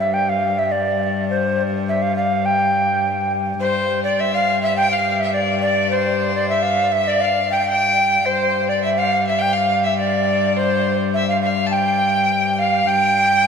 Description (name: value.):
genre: medieval dance.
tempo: 103 BPM.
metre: 2/4.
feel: straight.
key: unclear.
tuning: A4 = 439 Hz.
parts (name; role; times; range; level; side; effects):
breathy mellow tenor recorder; melody; 0.0-13.5 s; C5 to G5; -18 LUFS; right 1 dB; none.
rich viola da gamba; drone; 0.0-13.5 s; G2; -24 LUFS; left 4 dB; none.
rich fiddle; second line; 3.6-13.5 s; C5 to A5; -21 LUFS; left 3 dB; none.
room: wet cathedral reverb, RT60 5.0 s.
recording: none.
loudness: -16 LUFS.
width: side -6 dB against mid.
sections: 0.0-3.6 A section; 3.6-12.9 A section.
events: none.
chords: none.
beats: | 0.12 0.70 | 1.28 1.86 | 2.44 3.02 | 3.60 4.19 | 4.77 5.35 | 5.93 6.51 | 7.09 7.67 | 8.25 8.83 | 9.41 9.99 | 10.57 11.15 | 11.72 12.30 | 12.88 13.46.